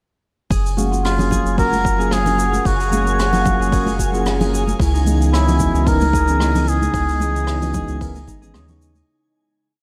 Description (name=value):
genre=sunset chillout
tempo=112 BPM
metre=4/4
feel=swing 54% on 16ths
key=F# major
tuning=A4 = 440 Hz
part: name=ethereal airy pad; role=sustained chords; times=1.3-9.0 s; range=C#3 to E#5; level=-31 LUFS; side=equal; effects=ensemble chorus, built-in reverb, phaser
part: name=concert harp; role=arpeggios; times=0.5-9.8 s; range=D#4 to D#5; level=-29 LUFS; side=equal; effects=digital delay
part: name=round analog bass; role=bass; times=0.5-9.0 s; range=F#1 to D#2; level=-22 LUFS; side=equal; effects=none
part: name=electronic kick drum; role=drums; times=0.5-8.4 s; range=none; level=-24 LUFS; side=equal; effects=overdrive
part: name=jazz brush drum kit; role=drums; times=0.5-9.1 s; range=hi-hat, rim click, shaker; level=-32 LUFS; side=equal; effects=none
part: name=twinkling granular texture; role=texture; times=0.7-9.1 s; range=G#5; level=-36 LUFS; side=equal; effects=built-in reverb
part: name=tine electric piano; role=accompaniment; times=0.8-8.9 s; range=E3 to E#5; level=-26 LUFS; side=equal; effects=low-pass filter, digital delay
part: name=congas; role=percussion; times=0.8-9.1 s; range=none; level=-28 LUFS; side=equal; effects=none
part: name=trumpet with cup mute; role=melody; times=1.0-8.6 s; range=E4 to A#4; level=-24 LUFS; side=equal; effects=delay
room=light reverb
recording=none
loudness=-18 LUFS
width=mono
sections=0.5-9.1 groove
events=fade-out 6.2-9.1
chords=0.5 F#maj9; 4.8 C#m9